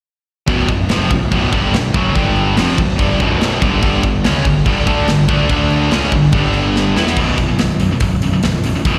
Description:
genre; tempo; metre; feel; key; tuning
heavy metal; 143 BPM; 4/4; straight; B minor; A4 = 440 Hz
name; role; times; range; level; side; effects
heavy high-gain guitar; riff; 0.5-9.0 s; B1 to E4; -23 LUFS; equal; distortion
high-gain distorted guitar; riff; 0.5-9.0 s; B1 to E4; -20 LUFS; equal; distortion
sludgy distorted guitar; riff; 0.5-7.2 s; B1 to E4; -24 LUFS; equal; none
fuzz picked electric bass; bass; 0.5-9.0 s; B0 to E2; -22 LUFS; equal; overdrive
tight metal drum kit; drums; 0.5-8.9 s; crash cymbal, hi-hat, kick drum, snare drum; -20 LUFS; equal; none
room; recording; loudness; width
light reverb; live gig heard through the venue's PA, recital hall reverb; -15 LUFS; mono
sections
0.5-7.2 A section; 7.2-9.0 B section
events
drum fill 6.8-7.2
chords
0.5 Bm; 2.1 G5; 2.6 Bm; 3.8 G5; 5.5 D5; 5.9 G5; 7.2 B5

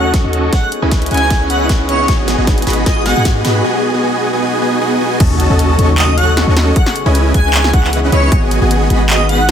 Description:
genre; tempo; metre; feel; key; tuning
future bass; 154 BPM; 4/4; half-time; C# minor; A4 = 439 Hz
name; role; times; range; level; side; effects
airy dreamy lead; melody; 0.0-3.2, 6.0-9.5 s; C#5 to G#5; -19 LUFS; right 1 dB; chorus, sidechain pumping, ping-pong delay
airy breathy pad; sustained chords; 0.0-9.5 s; C#3 to D#5; -27 LUFS; equal; none
concert harp; arpeggios; 0.0-9.5 s; B3 to F#5; -22 LUFS; left 6 dB; sidechain pumping, dub echo
dense compressed supersaw; riff; 0.0-9.5 s; B3 to C#6; -16 LUFS; right 1 dB; sidechain pumping, low-pass filter
warm 808-style bass; bass; 0.0-9.5 s; G#1 to G#2; -15 LUFS; equal; sidechain pumping
riser, swell and impact; sound effects; 0.7-6.8 s; none; -25 LUFS; equal; none
big-room dance drum kit; drums; 0.1-9.5 s; crash cymbal, handclaps, hi-hat, snare drum; -20 LUFS; equal; high-pass filter on snare, high-pass filter on hats, high-pass filter on cymbals
electronic kick drum; drums; 0.1-8.4 s; none; -13 LUFS; equal; none
room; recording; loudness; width
light reverb, digital ambience; none; -10 LUFS; side -8 dB against mid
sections
0.0-5.2 A section; 5.2-9.5 B section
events
build-up 0.0-5.2; drum fill 0.0-3.6; swell 4.6-5.2; drop 5.2-9.5; impact 5.2-6.8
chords
0.0 D#m7b5; 0.5 C#m9; 2.1 G#m7; 3.6 B6; 5.2 D#m7b5; 6.8 C#m9; 8.3 G#m7

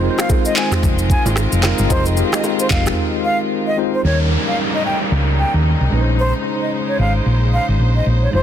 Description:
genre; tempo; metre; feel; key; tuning
afrobeats; 112 BPM; 4/4; swing 58% on 16ths; unclear; A4 = 440 Hz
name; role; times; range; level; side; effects
tine electric piano; accompaniment; 0.0-8.4 s; G3 to Eb5; -22 LUFS; left 1 dB; medium stereo tremolo
warm studio string section; sustained chords; 0.0-8.4 s; Db3 to C5; -26 LUFS; left 1 dB; none
hollow-body short-scale fingered electric bass; bass; 0.0-8.4 s; F1 to Eb2; -16 LUFS; equal; none
reedy concert flute; melody; 0.2-8.4 s; C5 to Ab5; -22 LUFS; equal; ping-pong delay
afro-pop drum kit; drums; 0.2-3.0 s; finger snaps, handclaps, kick drum, rim click, shaker, toms; -18 LUFS; equal; none
bongos and congas; percussion; 0.2-2.6 s; none; -28 LUFS; right 4 dB; none
downlifter; sound effects; 4.0-8.3 s; none; -25 LUFS; equal; none
room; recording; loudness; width
light reverb, digital ambience; dense, heavily limited modern master; -14 LUFS; side -10 dB against mid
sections
0.0-4.0 A section; 4.0-8.4 B section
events
break 3.0-4.0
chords
0.0 Fm7; 4.0 Eb7; 5.9 Bbm11

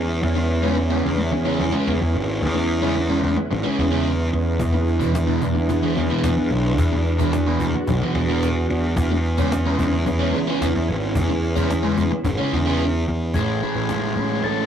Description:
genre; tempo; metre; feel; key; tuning
psychedelic rock; 110 BPM; 4/4; straight; unclear; A4 = 440 Hz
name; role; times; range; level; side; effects
soft string machine; sustained chords; 0.0-13.3 s; G#3 to F#4; -26 LUFS; right 1 dB; ensemble chorus
fuzz picked electric bass; bass; 0.0-14.7 s; G#1 to E2; -21 LUFS; equal; overdrive
fuzz guitar; riff; 0.4-14.7 s; E2 to E4; -23 LUFS; equal; distortion, phaser
cajon; drums; 4.6-14.5 s; none; -27 LUFS; left 1 dB; none
combo organ; melody; 13.3-14.7 s; G#4 to A4; -26 LUFS; left 2 dB; none
room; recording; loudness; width
moderate small room reverb, RT60 0.5 s; rough rehearsal-room recording, tube saturation; -18 LUFS; side -9 dB against mid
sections
0.0-13.3 A section; 13.3-14.7 B section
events
kick and snare drop out 12.8-13.3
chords
0.2 C#m7; 4.6 E7; 9.0 C#m7; 13.3 Amaj7

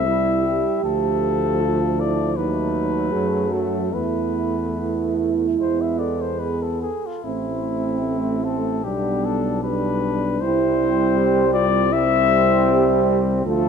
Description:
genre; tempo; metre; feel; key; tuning
classical, hymn-like piece for brass band; 71-80 BPM; 4/4; rubato; unclear; A4 = 440 Hz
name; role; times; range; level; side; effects
mellow cornet; melody; 0.0-13.7 s; E4 to E5; -24 LUFS; left 10 dB; none
dark French horn section; second line; 0.0-13.7 s; B3 to A4; -23 LUFS; right 9 dB; none
bright trombone section; accompaniment; 0.0-13.7 s; A3 to E4; -27 LUFS; left 2 dB; none
warm trombone; accompaniment; 0.0-13.7 s; F3 to A3; -27 LUFS; right 2 dB; none
mellow tuba; bass; 0.0-13.7 s; A1 to F#2; -26 LUFS; equal; none
room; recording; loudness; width
moderate concert hall reverb, RT60 2.1 s; none; -18 LUFS; side -6 dB against mid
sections
0.0-13.7 A section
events
none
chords
0.0 C; 0.8 Dm; 2.4 D#dim; 3.9 Esus4; 5.6 E; 7.2 Am; 8.8 G/B; 10.4 C

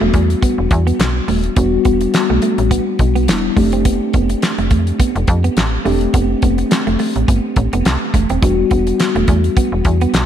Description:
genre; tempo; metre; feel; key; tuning
early-eighties boogie funk; 105 BPM; 4/4; swing 56% on 16ths; E minor; A4 = 441 Hz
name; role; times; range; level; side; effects
mellow tine electric piano; accompaniment; 0.0-10.3 s; G3 to G4; -18 LUFS; left 3 dB; slow stereo tremolo
clean electric guitar; riff; 0.0-10.1 s; A3 to C4; -21 LUFS; right 6 dB; analog chorus
slap-like FM bass; bass; 0.0-10.3 s; D#1 to F2; -17 LUFS; equal; none
damped 70s drum kit; drums; 0.1-10.3 s; handclaps, hi-hat, kick drum, snare drum; -17 LUFS; equal; none
room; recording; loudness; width
moderate lush hall reverb, RT60 1.8 s, small room ambience; dreamy mix soaked in reverb; -13 LUFS; side -10 dB against mid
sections
0.0-10.3 A section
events
none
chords
0.0 Em9; 3.6 F69; 8.4 Em9

